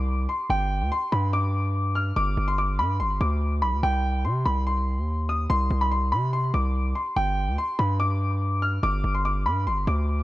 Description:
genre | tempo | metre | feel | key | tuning
hip hop | 144 BPM | 4/4 | half-time | unclear | A4 = 437 Hz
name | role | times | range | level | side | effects
bright upright piano | melody | 0.0-10.2 s | G5 to F6 | -26 LUFS | left 1 dB | low-pass filter, tape echo
hard-hitting 808-style bass | bass | 0.0-10.2 s | G1 to C3 | -24 LUFS | equal | none
room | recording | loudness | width
small room ambience | none | -22 LUFS | side -16 dB against mid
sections
0.0-10.2 A section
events
none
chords
0.5 G5; 3.8 Cm; 7.2 G5

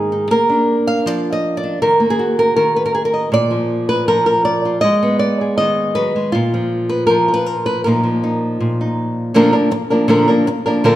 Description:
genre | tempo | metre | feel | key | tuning
flamenco | 159 BPM | 4/4 | straight | Bb phrygian dominant | A4 = 438 Hz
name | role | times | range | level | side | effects
flamenco guitar | solo | 0.0-11.0 s | Ab2 to F5 | -14 LUFS | equal | none
room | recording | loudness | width
wet recital hall reverb, RT60 1.7 s | none | -14 LUFS | side -14 dB against mid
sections
0.0-9.4 A section; 9.4-11.0 B section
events
none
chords
0.3 Bb; 1.8 Ebm; 3.3 Bb; 4.8 Abm; 6.3 Bb5; 7.8 Bbsus4; 9.4 Bb

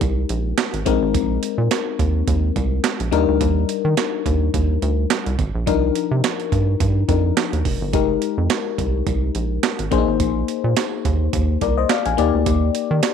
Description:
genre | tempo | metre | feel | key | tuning
early-eighties boogie funk | 106 BPM | 4/4 | swing 56% on 16ths | F dorian | A4 = 441 Hz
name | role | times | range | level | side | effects
FM electric piano | accompaniment | 0.0-13.1 s | F3 to Ab5 | -22 LUFS | left 14 dB | chorus
rubbery square bass | bass | 0.0-13.0 s | F1 to Eb3 | -20 LUFS | right 2 dB | none
breakbeat sampler-style drum kit | drums | 0.0-13.1 s | handclaps, hi-hat, kick drum, snare drum | -23 LUFS | right 6 dB | none
room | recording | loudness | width
little or no reverb | 1960s-style stereo with parts hard left and right | -17 LUFS | side -7 dB against mid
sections
0.0-13.1 A section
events
none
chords
0.0 Fm11 (rootless); 0.9 Bb9sus4; 3.1 Ebmaj7; 5.7 Cm11; 7.9 Fm11; 9.9 Bb9sus4; 12.2 Ebmaj7

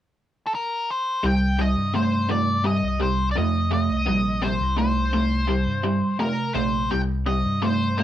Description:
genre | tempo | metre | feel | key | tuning
rock | 85 BPM | 4/4 | straight | C minor | A4 = 440 Hz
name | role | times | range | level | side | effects
octave-fuzz lead guitar | melody | 0.5-8.0 s | A4 to G5 | -26 LUFS | left 1 dB | wah, distortion
crunchy overdriven guitar | riff | 1.2-8.0 s | C3 to A3 | -23 LUFS | right 1 dB | none
overdriven picked electric bass | bass | 1.2-8.0 s | Bb1 to G2 | -25 LUFS | equal | none
room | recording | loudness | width
moderate studio reverb, RT60 0.6 s | band playing live in one room | -20 LUFS | side -11 dB against mid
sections
0.0-1.2 A section; 1.2-8.0 B section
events
none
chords
0.0 N.C.; 1.2 Cm7

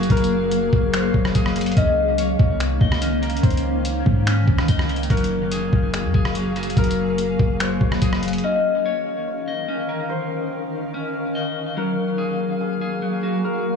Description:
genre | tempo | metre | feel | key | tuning
hip hop, atmospheric cloud-rap | 144 BPM | 4/4 | half-time | Db major | A4 = 442 Hz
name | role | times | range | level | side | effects
concert harp | melody | 0.0-13.8 s | Ab4 to Eb5 | -26 LUFS | left 5 dB | tape echo
granular cloud pad | sustained chords | 0.0-13.8 s | Eb3 to F5 | -25 LUFS | left 1 dB | built-in reverb, sidechain pumping
clean electric guitar | arpeggios | 0.0-13.8 s | Gb3 to Eb5 | -26 LUFS | equal | spring reverb, tape echo
clean 808-style bass | bass | 0.0-8.4 s | Gb1 to Ab2 | -24 LUFS | equal | none
trip hop sampler-style drum kit | drums | 0.0-8.4 s | finger snaps, hi-hat, kick drum, rim click | -21 LUFS | equal | vintage 12-bit sampler grit
room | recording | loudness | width
light reverb, digital ambience | echo-heavy mix, studio ambience | -18 LUFS | side -6 dB against mid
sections
0.0-8.4 A section; 8.4-13.8 B section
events
none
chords
0.0 Gbmaj9; 1.8 Db69; 5.1 Gbmaj9; 8.4 Db69; 11.8 Gbmaj9

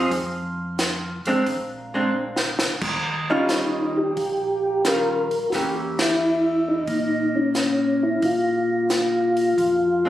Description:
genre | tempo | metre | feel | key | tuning
soul jazz organ trio | 89 BPM | 4/4 | swing 69% on 8ths | unclear | A4 = 441 Hz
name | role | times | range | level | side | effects
archtop guitar, miked and amplified | accompaniment | 0.0-10.1 s | Eb3 to Ab4 | -24 LUFS | right 1 dB | none
tonewheel organ | bass | 0.0-10.1 s | Bb1 to Bb2 | -30 LUFS | equal | overdrive, slow rotary speaker
compact cocktail drum kit | drums | 0.1-9.8 s | crash cymbal, hi-hat, kick drum, ride cymbal, snare drum | -26 LUFS | equal | none
percussive tonewheel organ | melody | 3.3-10.1 s | C#4 to Bb4 | -20 LUFS | left 1 dB | slow rotary speaker, chorus vibrato
room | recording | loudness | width
moderate large studio reverb, RT60 1.1 s | recorded on a phone in the room, studio reverb | -20 LUFS | side -13 dB against mid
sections
0.0-10.1 A section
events
drum fill 2.1-2.8; band accent 5.9-6.2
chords
0.1 Fm; 1.5 Bb9; 2.8 Eb9; 5.5 Edim7; 8.2 Bb5

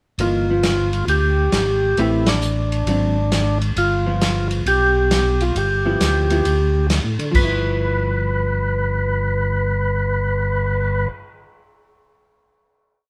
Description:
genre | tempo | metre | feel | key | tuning
soul jazz organ trio | 134 BPM | 4/4 | swing 66% on 8ths | G mixolydian | A4 = 441 Hz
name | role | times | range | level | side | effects
percussive tonewheel organ | melody | 0.2-11.1 s | D4 to B4 | -23 LUFS | equal | slow rotary speaker
vintage hollow-body jazz guitar | accompaniment | 0.2-11.2 s | E3 to B4 | -28 LUFS | equal | none
tonewheel organ | bass | 0.2-11.1 s | G1 to D3 | -23 LUFS | equal | overdrive, chorus vibrato, slow rotary speaker
warm soul drum kit | drums | 0.2-10.8 s | crash cymbal, cymbal swell, hi-hat, kick drum, ride cymbal, snare drum | -26 LUFS | equal | none
room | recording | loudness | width
moderate stone room reverb, RT60 1.2 s | band playing live in one room | -19 LUFS | mono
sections
0.2-7.3 A section; 7.3-10.9 final chord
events
band accent 2.2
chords
0.2 G6; 2.0 Am9; 2.9 Ab7#11; 3.8 G13; 7.3 G6

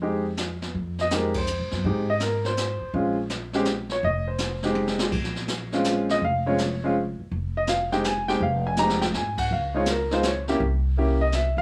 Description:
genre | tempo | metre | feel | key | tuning
jazz piano trio | 164 BPM | 3/4 | swing 66% on 8ths | F minor | A4 = 439 Hz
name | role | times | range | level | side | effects
clear grand piano | melody | 0.0-11.6 s | Ab3 to Bb5 | -27 LUFS | equal | none
upright bass | bass | 0.0-11.6 s | F1 to C3 | -31 LUFS | equal | none
jazz brush drum kit | drums | 0.4-11.6 s | brushed snare drum, crash cymbal, hi-hat, kick drum, ride cymbal, snare drum, toms | -32 LUFS | equal | none
room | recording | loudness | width
moderate studio reverb, RT60 0.6 s | small room ambience | -25 LUFS | mono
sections
0.7-11.6 A section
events
band accent 1.3; drum fill 4.8-5.1, 8.8-9.1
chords
0.0 Fm7; 2.9 Bbm7; 4.0 Fm7; 5.1 Bbm7; 7.3 Fm7; 9.5 Dbmaj7; 10.6 C7b9

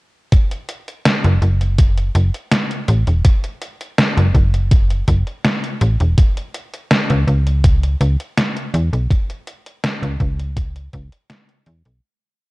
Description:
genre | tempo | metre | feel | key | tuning
vaporwave | 82 BPM | 4/4 | straight | F# minor | A4 = 438 Hz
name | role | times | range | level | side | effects
detuned 8-bit digital drum machine | drums | 0.3-12.0 s | hi-hat, snare drum | -19 LUFS | equal | overdrive, gated reverb
electronic kick drum | drums | 0.3-11.1 s | none | -14 LUFS | equal | overdrive
slap-like FM bass | bass | 1.2-12.0 s | E1 to E2 | -15 LUFS | equal | none
room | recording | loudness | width
little or no reverb | cassette tape | -14 LUFS | side -22 dB against mid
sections
0.3-12.0 groove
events
fade-out 8.1-12.0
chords
none

